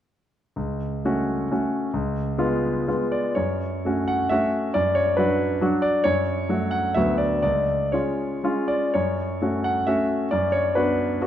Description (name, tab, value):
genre	classical, romantic triple-time dance for piano with dotted rhythms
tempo	112-143 BPM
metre	3/4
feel	rubato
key	F# minor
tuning	A4 = 439 Hz
part	clear concert grand piano	solo	0.6-11.3 s	C#2 to F#5	-21 LUFS	equal	none
room	wet recital hall reverb, RT60 1.6 s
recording	dark, warm production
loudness	-21 LUFS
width	side -10 dB against mid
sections	0.6-3.4 A section; 3.4-11.3 B section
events	none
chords	0.6 F#m/C#; 1.9 C#7; 3.4 F#m; 4.8 Bm/F#; 6.1 F#m; 7.0 Bm/D; 7.4 C#; 8.9 F#m; 10.3 Bm/F#